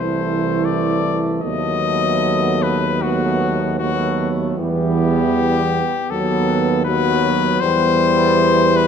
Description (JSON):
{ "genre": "classical, hymn-like piece for brass band", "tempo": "78 BPM", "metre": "4/4", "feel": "rubato", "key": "unclear", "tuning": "A4 = 440 Hz", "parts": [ { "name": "mellow cornet", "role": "melody", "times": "0.0-8.9 s", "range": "F#4 to D#5", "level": "-20 LUFS", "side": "left 7 dB", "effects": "none" }, { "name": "mellow French horn section", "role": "second line", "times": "0.0-8.9 s", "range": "B3 to E4", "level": "-23 LUFS", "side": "right 6 dB", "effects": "none" }, { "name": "dark euphonium", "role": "accompaniment", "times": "0.0-8.9 s", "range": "E3 to F#3", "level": "-22 LUFS", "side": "right 4 dB", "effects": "none" }, { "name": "dark trombone section", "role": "accompaniment", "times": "0.0-8.9 s", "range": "F#3 to A3", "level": "-26 LUFS", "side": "left 4 dB", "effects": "none" }, { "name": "clear tuba", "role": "bass", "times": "0.0-8.9 s", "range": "C2 to E2", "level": "-22 LUFS", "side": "equal", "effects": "none" } ], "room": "wet scoring stage reverb, RT60 1.7 s", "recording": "none", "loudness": "-15 LUFS", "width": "side -7 dB against mid", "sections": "0.0-8.9 A section", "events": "none", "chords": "0.0 Am/C; 1.4 B7/D#; 4.6 Em; 6.1 B7/D#; 7.6 Em", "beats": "0.66 | 1.44 2.24 3.03 3.80 | 4.57 5.34 6.10 6.86 | 7.62 8.40" }